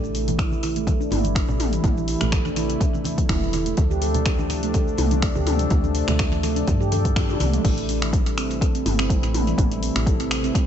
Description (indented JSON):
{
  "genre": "afro house",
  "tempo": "124 BPM",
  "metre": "4/4",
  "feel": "swing 54% on 16ths",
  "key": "A minor",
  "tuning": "A4 = 440 Hz",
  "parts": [
    { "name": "warm analog pad", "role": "sustained chords", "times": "0.0-10.7 s", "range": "C3 to E4", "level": "-31 LUFS", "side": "left 3 dB", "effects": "chorus, sidechain pumping" },
    { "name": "handpan", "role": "arpeggios", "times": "0.0-10.6 s", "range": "E3 to A4", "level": "-26 LUFS", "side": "right 2 dB", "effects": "sidechain pumping, dub echo" },
    { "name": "woody FM bass", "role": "bass", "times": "0.0-10.5 s", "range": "E1 to G2", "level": "-25 LUFS", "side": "equal", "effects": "sidechain pumping" },
    { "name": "deep house drum kit", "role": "drums", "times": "0.0-10.7 s", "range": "crash cymbal, finger snaps, hi-hat, shaker, toms", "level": "-28 LUFS", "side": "equal", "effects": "tape echo" },
    { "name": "congas", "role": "percussion", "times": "0.0-7.6 s", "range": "none", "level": "-32 LUFS", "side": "right 2 dB", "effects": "none" },
    { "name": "electronic kick drum", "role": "drums", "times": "0.4-10.7 s", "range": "none", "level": "-22 LUFS", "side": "equal", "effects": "none" }
  ],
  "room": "light reverb",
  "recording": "echo-heavy mix, nothing above 8.0 kHz",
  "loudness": "-19 LUFS",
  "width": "side -9 dB against mid",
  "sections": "0.0-7.6 A section; 7.6-10.7 B section",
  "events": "drum fill 7.2-7.6; drop 7.6-10.7",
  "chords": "0.0 Am; 3.8 Dm7; 7.6 Am"
}